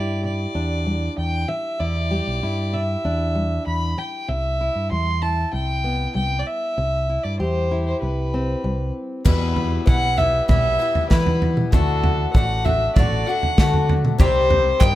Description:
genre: indie folk with a building arrangement.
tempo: 97 BPM.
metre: 4/4.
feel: straight.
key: unclear.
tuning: A4 = 440 Hz.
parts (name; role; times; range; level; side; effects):
warm fiddle; melody; 0.0-15.0 s; A4 to C6; -23 LUFS; equal; none.
fingerpicked steel-string acoustic guitar; accompaniment; 0.0-11.7 s; G2 to G4; -29 LUFS; left 1 dB; none.
picked electric bass; bass; 0.0-15.0 s; A1 to E3; -23 LUFS; equal; none.
picked swing-style acoustic guitar; accompaniment; 9.2-15.0 s; E2 to G4; -25 LUFS; left 5 dB; none.
natural country drum kit; drums; 9.3-15.0 s; crash cymbal, kick drum, snare drum, toms; -19 LUFS; equal; none.
mandolin; arpeggios; 14.2-15.0 s; G4 to Eb5; -29 LUFS; right 6 dB; none.
group handclap; percussion; 14.8-15.0 s; none; -30 LUFS; right 6 dB; none.
room: small room reverb.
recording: rough home demo mix.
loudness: -18 LUFS.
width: side -15 dB against mid.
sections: 0.0-9.3 A section; 9.3-15.0 B section.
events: none.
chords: 0.0 Em7; 4.3 Cmaj7; 9.3 Em; 11.7 D; 14.2 Cm.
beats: 0.55 1.18 | 1.80 2.42 3.05 3.67 | 4.29 4.91 5.54 6.16 | 6.78 7.40 8.02 8.64 | 9.26 9.88 10.49 11.11 | 11.73 12.35 12.96 13.58 | 14.19 14.81.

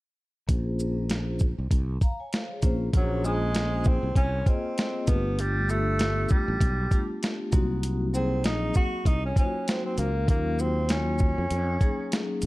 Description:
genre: hip hop, jazz-hop.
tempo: 98 BPM.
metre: 4/4.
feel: swing 57% on 16ths.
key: Bb minor.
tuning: A4 = 439 Hz.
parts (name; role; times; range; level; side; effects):
vibraphone with soft mallets; accompaniment; 0.5-12.5 s; Gb3 to Bb5; -32 LUFS; left 2 dB; low-pass filter.
sustaining fretless electric bass; bass; 0.5-12.5 s; G1 to F2; -28 LUFS; equal; none.
dusty soul sampler-style drum kit; drums; 0.5-12.5 s; hi-hat, kick drum, shaker, snare drum; -25 LUFS; equal; none.
breathy tenor saxophone; melody; 3.0-12.4 s; Gb3 to Gb4; -30 LUFS; equal; none.
room: digital ambience.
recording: dark, warm production.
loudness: -23 LUFS.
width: side -19 dB against mid.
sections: 0.5-2.9 A section; 2.9-12.5 B section.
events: filter sweep on vibraphone 0.5-2.9.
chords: 0.5 Bbm9; 5.1 G7; 7.5 Cm7b5; 10.3 Ebm9.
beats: | 0.49 1.10 1.71 2.33 | 2.94 3.55 4.16 4.78 | 5.39 6.00 6.61 7.22 | 7.84 8.45 9.06 9.67 | 10.29 10.90 11.51 12.12.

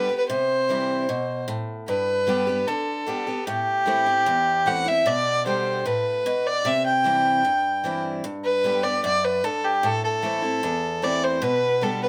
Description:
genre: country.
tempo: 151 BPM.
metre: 4/4.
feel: straight.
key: G major.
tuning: A4 = 442 Hz.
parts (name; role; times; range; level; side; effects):
dark fiddle; melody; 0.0-12.1 s; G4 to G5; -24 LUFS; equal; none.
picked steel-string acoustic guitar; accompaniment; 0.0-12.1 s; E2 to G4; -30 LUFS; equal; none.
room: moderate studio ambience, RT60 0.5 s.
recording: none.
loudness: -23 LUFS.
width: mono.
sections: 0.0-12.1 A section.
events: none.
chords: 0.3 C; 1.9 G; 3.5 Am; 5.1 G/B; 6.7 C; 8.2 G; 9.8 Am; 11.4 G/B.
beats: | 0.29 0.69 1.09 1.49 | 1.88 2.28 2.68 3.08 | 3.47 3.87 4.27 4.67 | 5.06 5.46 5.86 6.25 | 6.65 7.05 7.45 7.84 | 8.24 8.64 9.04 9.44 | 9.83 10.23 10.63 11.03 | 11.42 11.82.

